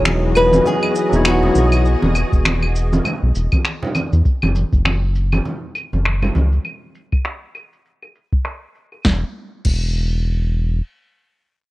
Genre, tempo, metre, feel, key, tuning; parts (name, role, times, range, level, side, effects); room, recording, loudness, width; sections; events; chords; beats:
sunset chillout; 100 BPM; 4/4; swing 58% on 16ths; A4 = 437 Hz
overdriven tine electric piano; accompaniment; 0.0-1.9 s; F#3 to C#5; -21 LUFS; left 1 dB; auto-pan, low-pass filter, ping-pong delay
soft string machine; sustained chords; 0.0-4.2 s; E3 to D#5; -25 LUFS; equal; ensemble chorus
round analog bass; bass; 0.0-10.8 s; E1 to E2; -17 LUFS; equal
deep house drum kit; drums; 0.1-9.8 s; claves, crash cymbal, finger snaps, shaker, snare drum; -23 LUFS; equal; overdrive, low-pass filter on hats, low-pass filter on perc, low-pass filter on snare, low-pass filter on cymbals, low-pass filter on room
congas; percussion; 0.1-6.5 s; -23 LUFS; right 1 dB
flamenco guitar; melody; 0.4-1.7 s; F#4 to B4; -18 LUFS; left 1 dB; ping-pong delay
electronic kick drum; drums; 2.3-9.8 s; -17 LUFS; equal; overdrive
light reverb, digital ambience; worn, warbling old tape, cassette tape, warbly pitch drift; -15 LUFS; side -18 dB against mid
0.0-9.1 A section; 9.1-11.4 B section
filter sweep on drum 0.0-9.1; filter sweep on analog synth bass 0.0-6.7; filter sweep on tine electric piano 0.0-1.9
0.0 Emaj9; 4.2 F#5; 9.1 N.C.
0.05 0.65 1.25 | 1.85 2.45 3.05 3.65 | 4.25 4.85 5.45 6.05 | 6.65 7.25 7.85 8.45 | 9.05 9.65 10.25